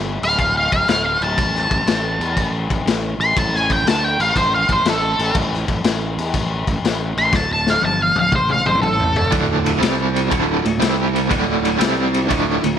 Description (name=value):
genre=blues rock power trio and southern rock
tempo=121 BPM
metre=4/4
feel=swing 68% on 8ths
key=unclear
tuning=A4 = 440 Hz
part: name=fuzz fingered electric bass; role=bass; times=0.0-12.8 s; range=D1 to E2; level=-23 LUFS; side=right 2 dB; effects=overdrive
part: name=octave-fuzz lead guitar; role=melody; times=0.2-9.3 s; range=A4 to C6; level=-18 LUFS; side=equal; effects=wah, distortion
part: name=raw garage drum kit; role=drums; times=0.2-12.7 s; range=crash cymbal, kick drum, ride cymbal, snare drum, toms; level=-20 LUFS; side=left 3 dB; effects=none
part: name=biting overdriven guitar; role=riff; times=9.3-12.8 s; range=D2 to C4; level=-18 LUFS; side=right 2 dB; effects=tremolo
room=light reverb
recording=1960s-style stereo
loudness=-15 LUFS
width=side -9 dB against mid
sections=0.0-9.3 A section; 9.3-12.8 B section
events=lead electric guitar solo 0.0-9.3; drum fill 7.3-9.3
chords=0.0 N.C.; 1.4 A5; 7.3 Dmadd11; 8.3 A5; 9.3 D5; 9.8 C5; 10.3 D5; 10.8 C5; 11.3 D5; 11.8 C5; 12.3 D5